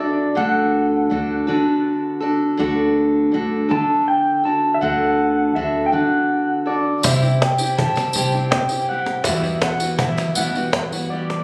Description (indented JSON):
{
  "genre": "acoustic folk duo or small band",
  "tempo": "54 BPM (dotted quarters)",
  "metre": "6/8",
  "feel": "straight",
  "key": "unclear",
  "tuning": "A4 = 440 Hz",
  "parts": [
    { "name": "pedal steel guitar", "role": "melody", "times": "0.0-11.4 s", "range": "D5 to A5", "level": "-24 LUFS", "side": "equal", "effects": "none" },
    { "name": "picked steel-string acoustic guitar", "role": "accompaniment", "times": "0.0-11.4 s", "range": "E2 to A4", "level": "-23 LUFS", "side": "equal", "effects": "none" },
    { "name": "upright bass", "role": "bass", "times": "0.0-11.4 s", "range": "D2 to D3", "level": "-28 LUFS", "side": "equal", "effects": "none" },
    { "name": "cajon", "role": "percussion", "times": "7.0-11.4 s", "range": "none", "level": "-26 LUFS", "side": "equal", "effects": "none" },
    { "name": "tambourine", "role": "percussion", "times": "7.0-11.1 s", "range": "none", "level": "-29 LUFS", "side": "equal", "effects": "none" }
  ],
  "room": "wet large studio reverb, RT60 1.4 s",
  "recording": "recorded on a phone in the room, club reverb, compression",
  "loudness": "-19 LUFS",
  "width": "mono",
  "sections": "0.0-7.0 A section; 7.0-11.4 B section",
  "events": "none",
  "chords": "0.0 D; 7.0 C; 9.3 Emadd9",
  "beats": "| 0.36 1.48 | 2.59 3.71 | 4.82 5.93 | 7.04 8.15 | 9.27 10.38"
}